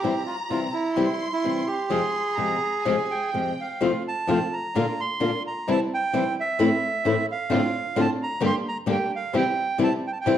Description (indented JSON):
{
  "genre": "tango",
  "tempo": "130 BPM",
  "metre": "4/4",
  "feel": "rubato",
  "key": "F harmonic minor, F major from 3.8 s",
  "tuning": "A4 = 440 Hz",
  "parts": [
    { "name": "bandoneon", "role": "melody", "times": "0.0-10.4 s", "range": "E4 to C6", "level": "-26 LUFS", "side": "right 4 dB", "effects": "plate reverb" },
    { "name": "rich chamber violin section", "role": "second line", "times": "0.0-3.8 s", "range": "G5 to C6", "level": "-34 LUFS", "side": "left 1 dB", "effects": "none" },
    { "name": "flamenco guitar", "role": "accompaniment", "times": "0.0-10.4 s", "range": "F2 to G4", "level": "-25 LUFS", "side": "left 4 dB", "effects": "none" },
    { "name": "warm chamber string section", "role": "stabs", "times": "0.0-10.4 s", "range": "A2 to G4", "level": "-30 LUFS", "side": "right 3 dB", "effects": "none" }
  ],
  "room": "wet large studio reverb, RT60 0.8 s",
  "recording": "worn, warbling old tape, cassette tape, warbly pitch drift",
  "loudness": "-22 LUFS",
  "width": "side -10 dB against mid",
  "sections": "0.0-3.8 A section; 3.8-10.4 B section",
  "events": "none",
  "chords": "0.0 C; 1.9 Fmadd9; 3.8 F; 4.8 Bb; 5.7 C; 6.6 Am; 7.5 Dm7/A; 8.4 Gm; 9.3 C"
}